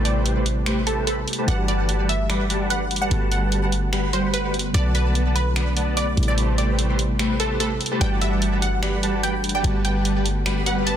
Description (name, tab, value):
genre	future bass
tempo	147 BPM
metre	4/4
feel	swing 53% on 16ths, half-time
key	A dorian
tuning	A4 = 440 Hz
part	tine electric piano	accompaniment	0.0-11.0 s	C3 to F#4	-29 LUFS	right 2 dB	medium tremolo, dub echo
part	ethereal airy pad	sustained chords	0.0-11.0 s	G3 to B4	-34 LUFS	equal	none
part	supersaw chords	riff	0.0-10.9 s	G3 to C6	-26 LUFS	equal	wide subtle chorus, low-pass filter
part	warm 808-style bass	bass	0.0-11.0 s	G1 to B1	-23 LUFS	equal	none
part	wide unison pluck	melody	0.1-11.0 s	A4 to A5	-28 LUFS	right 1 dB	phaser, digital delay
part	pop drum kit	drums	0.1-11.0 s	finger snaps, hi-hat	-28 LUFS	right 1 dB	soft clipping on snare
part	swell	sound effects	10.6-11.0 s	none	-29 LUFS	right 1 dB	none
room	light reverb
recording	dense, heavily limited modern master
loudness	-19 LUFS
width	side -10 dB against mid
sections	0.0-11.0 A section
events	swell 10.6-11.0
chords	0.0 Am9; 1.5 Em11/G; 3.1 Gmaj9; 4.7 Bm7; 6.2 Am9; 8.0 Em11/G; 9.6 Gmaj9